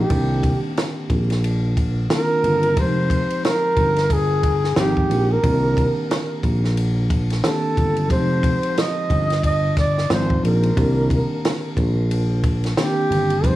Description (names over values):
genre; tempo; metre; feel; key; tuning
hip hop, jazz-hop; 90 BPM; 4/4; swing 60% on 16ths; unclear; A4 = 440 Hz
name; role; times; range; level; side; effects
breathy flugelhorn; melody; 0.0-13.6 s; G4 to Eb5; -22 LUFS; right 1 dB; analog delay
mellow tine electric piano; accompaniment; 0.0-13.6 s; Eb3 to G4; -24 LUFS; left 1 dB; medium stereo tremolo
sustaining fretless electric bass; bass; 0.0-13.6 s; F1 to C2; -20 LUFS; equal; none
compact cocktail drum kit; drums; 0.1-13.6 s; hi-hat, kick drum, ride cymbal, snare drum; -23 LUFS; equal; none
room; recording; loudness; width
light reverb; vinyl crackle, small room ambience; -17 LUFS; side -15 dB against mid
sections
0.0-13.6 A section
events
none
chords
0.1 Cm9; 2.8 Fm9; 5.4 Cm9; 8.1 Fm9; 10.8 Cm9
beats
| 0.10 0.77 1.43 2.10 | 2.77 3.43 4.10 4.77 | 5.43 6.10 6.77 7.43 | 8.10 8.77 9.43 10.10 | 10.77 11.43 12.10 12.77 | 13.43